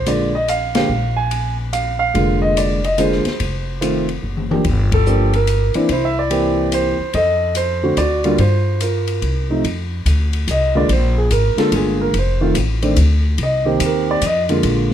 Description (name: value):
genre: jazz piano trio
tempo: 144 BPM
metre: 3/4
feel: swing 65% on 8ths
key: unclear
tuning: A4 = 442 Hz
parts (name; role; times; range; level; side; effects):
- dark baby grand piano; melody; 0.0-14.9 s; C3 to Ab5; -17 LUFS; right 1 dB; plate reverb
- upright bass; bass; 0.0-14.9 s; F1 to G2; -19 LUFS; equal; none
- open jazz drum kit; drums; 0.1-14.9 s; hi-hat, kick drum, ride cymbal, snare drum, toms; -26 LUFS; left 4 dB; none
room: light reverb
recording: none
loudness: -15 LUFS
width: side -10 dB against mid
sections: 0.0-9.6 A section; 9.6-14.9 B section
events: band accent 0.7, 4.9; drum fill 4.2-4.6; grand piano solo 9.6-14.9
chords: 0.0 Bb7; 3.4 F5; 4.6 Gm; 5.9 C7; 7.1 F7; 8.0 D; 8.4 Gm7; 9.2 Cm7; 9.6 F5; 10.9 Bb7; 12.1 F7; 13.4 Cm7; 14.2 Bbadd11/F